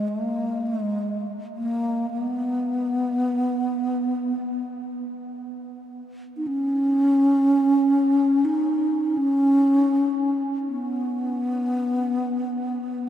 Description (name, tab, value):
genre	world meditative, free-time meditation music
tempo	free time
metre	none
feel	none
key	unclear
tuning	A4 = 440 Hz
part	breathy mellow bass flute	solo	0.0-13.1 s	G#3 to D#4	-21 LUFS	equal	none
room	wet huge ambient reverb, RT60 9.1 s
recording	dark, warm production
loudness	-21 LUFS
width	side -11 dB against mid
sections	0.0-13.1 A section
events	none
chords	none